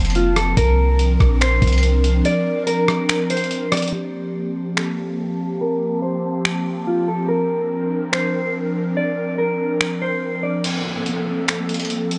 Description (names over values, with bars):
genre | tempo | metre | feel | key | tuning
hip hop, atmospheric cloud-rap | 143 BPM | 4/4 | half-time | G minor | A4 = 440 Hz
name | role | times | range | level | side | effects
mellow electric guitar | melody | 0.0-10.6 s | F4 to D5 | -25 LUFS | equal | low-pass filter, delay
airy breathy pad | sustained chords | 0.0-12.2 s | F3 to A5 | -25 LUFS | equal | chorus, sidechain pumping, low-pass filter
warm 808-style bass | bass | 0.0-2.2 s | F1 to C2 | -19 LUFS | equal | none
lo-fi sampler-style drum kit | drums | 0.0-12.2 s | crash cymbal, finger snaps, hi-hat, kick drum, rim click | -24 LUFS | equal | none
downlifter | sound effects | 10.6-12.2 s | none | -34 LUFS | equal | none
room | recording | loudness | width
little or no reverb | nothing above 10.3 kHz | -20 LUFS | mono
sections
0.0-3.9 A section; 3.9-10.6 B section; 10.6-12.2 C section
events
break 2.3-3.9; filter sweep 3.9-10.6; kick muted 10.6-12.2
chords
0.0 Gm11 (rootless); 0.6 C9sus4; 3.9 Gm11; 7.3 C9sus4; 10.6 Fadd11